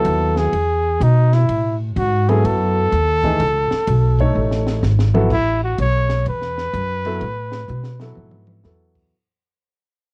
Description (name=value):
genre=modal jazz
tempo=126 BPM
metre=4/4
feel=swing 66% on 8ths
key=unclear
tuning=A4 = 440 Hz
part: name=breathy trumpet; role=melody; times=0.0-8.6 s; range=Eb4 to Db5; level=-23 LUFS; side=equal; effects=cassette tape
part: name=warm grand piano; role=accompaniment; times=0.0-9.1 s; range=Fb3 to Db5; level=-24 LUFS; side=equal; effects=cassette tape
part: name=upright bass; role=bass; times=0.0-9.1 s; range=Ab1 to Cb3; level=-21 LUFS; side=equal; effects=transformer saturation
part: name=compact cocktail drum kit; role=drums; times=0.0-9.0 s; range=crash cymbal, hi-hat, kick drum, ride cymbal, snare drum, toms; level=-33 LUFS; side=equal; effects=cassette tape
room=light reverb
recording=home recording on cassette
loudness=-18 LUFS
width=mono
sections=0.0-5.3 A section; 5.3-9.1 B section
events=drum fill 4.4-5.3, 7.7-8.6; fade-out 5.3-9.1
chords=0.0 Gbm11